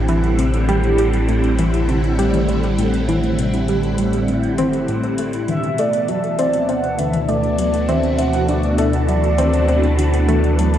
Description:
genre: ambient, sequencer-driven space music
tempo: 100 BPM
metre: 4/4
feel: straight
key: A dorian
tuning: A4 = 443 Hz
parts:
  - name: phased string machine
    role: sustained chords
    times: 0.0-10.8 s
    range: A2 to F#4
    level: -20 LUFS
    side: equal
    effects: ensemble chorus, phaser
  - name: round analog bass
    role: bass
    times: 0.0-10.8 s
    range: A1 to D2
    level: -20 LUFS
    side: equal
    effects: none
  - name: bubbling stepped-filter texture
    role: texture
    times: 0.0-10.8 s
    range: F#5 to A5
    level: -35 LUFS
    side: equal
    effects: chorus, built-in reverb
  - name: tight sequenced synth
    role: riff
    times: 0.1-10.7 s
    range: A2 to C4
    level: -22 LUFS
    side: equal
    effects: chorus, tape echo
  - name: soft vintage rhythm box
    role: percussion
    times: 0.1-10.8 s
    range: hi-hat, toms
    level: -28 LUFS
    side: left 3 dB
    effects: overdrive
  - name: expressive portamento lead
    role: melody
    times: 5.5-10.0 s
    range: D5 to F#5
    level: -22 LUFS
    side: right 1 dB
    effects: analog chorus, tape echo
room: wet scoring stage reverb, RT60 2.2 s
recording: dark, warm production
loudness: -15 LUFS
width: side -10 dB against mid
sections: 0.0-10.8 A section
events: none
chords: 0.0 Am; 5.5 D

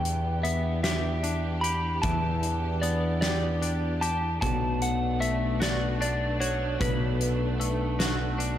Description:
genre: post-rock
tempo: 50 BPM (dotted quarters)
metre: 6/8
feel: straight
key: B minor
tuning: A4 = 439 Hz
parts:
  - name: electric slide guitar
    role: melody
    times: 0.0-8.4 s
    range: B4 to B5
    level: -31 LUFS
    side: equal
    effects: digital delay
  - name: clear symphonic string section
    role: sustained chords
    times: 0.0-8.6 s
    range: E3 to G4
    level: -37 LUFS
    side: right 2 dB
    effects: none
  - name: twangy electric guitar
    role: arpeggios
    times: 0.0-8.6 s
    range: B2 to G4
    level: -32 LUFS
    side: left 3 dB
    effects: analog chorus, slapback echo, digital delay
  - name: growling picked electric bass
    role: bass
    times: 0.0-8.6 s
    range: B1 to E2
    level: -29 LUFS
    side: equal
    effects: overdrive
  - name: big rock drum kit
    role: drums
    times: 0.1-8.6 s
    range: hi-hat, kick drum, snare drum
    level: -31 LUFS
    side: equal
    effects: none
room: light reverb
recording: none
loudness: -25 LUFS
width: side -11 dB against mid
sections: 0.0-8.6 A section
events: none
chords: 0.0 Em7; 4.4 Bm7

